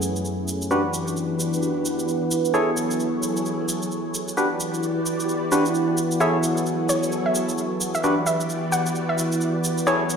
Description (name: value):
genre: UK garage, two-step garage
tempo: 131 BPM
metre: 4/4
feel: swing 61% on 16ths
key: unclear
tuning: A4 = 439 Hz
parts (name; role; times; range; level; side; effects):
- soft string machine; sustained chords; 0.0-10.2 s; F#2 to D5; -26 LUFS; equal; ensemble chorus
- cabasa; drums; 0.0-10.2 s; none; -30 LUFS; right 2 dB; none
- deep dark ambient pad; texture; 0.0-10.2 s; E4 to C#6; -26 LUFS; right 1 dB; chorus, built-in reverb
- percussive organ stab; stabs; 0.7-10.0 s; D4 to C#5; -24 LUFS; equal; wide subtle chorus, cassette tape, digital delay
- hollow square pluck; melody; 6.2-10.2 s; C#5 to F#5; -26 LUFS; left 1 dB; chorus, digital delay
room: wet lush hall reverb, RT60 2.5 s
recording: played on a big sound system in a bare room, large studio reverb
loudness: -21 LUFS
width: side -6 dB against mid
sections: 0.0-10.2 A section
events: filter sweep on string machine 0.0-10.2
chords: 0.5 Em9; 2.5 F#m9; 4.1 Em9; 6.2 F#m9; 7.8 Em9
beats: 0.25 | 0.71 1.17 1.62 2.08 | 2.54 3.00 3.46 3.91 | 4.37 4.83 5.29 5.75 | 6.20 6.66 7.12 7.58 | 8.04 8.49 8.95 9.41 | 9.87